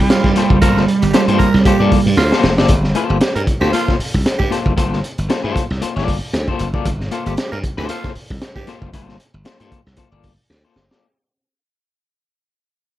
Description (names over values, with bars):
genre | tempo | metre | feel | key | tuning
funk | 115 BPM | 4/4 | swing 56% on 16ths | G minor | A4 = 440 Hz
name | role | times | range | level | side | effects
nasal lead guitar with a parked wah | melody | 0.0-2.1 s | G3 | -15 LUFS | right 4 dB | overdrive, slapback echo
glassy slap bass | bass | 0.0-10.9 s | F1 to G2 | -19 LUFS | equal | none
growling tenor saxophone | second line | 0.1-8.8 s | F4 to Bb4 | -23 LUFS | right 5 dB | none
crunchy breakbeat drum kit | drums | 0.1-11.0 s | hi-hat, kick drum, snare drum | -18 LUFS | equal | none
electric guitar at the edge of break-up | accompaniment | 0.4-11.1 s | Bb3 to D5 | -21 LUFS | left 7 dB | tremolo
room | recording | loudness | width
light reverb, small room ambience | none | -14 LUFS | side -14 dB against mid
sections
0.0-2.7 A section; 2.7-11.0 B section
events
drum fill 2.2-2.7, 10.5-11.0; fade-out 2.7-11.0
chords
0.0 Gm11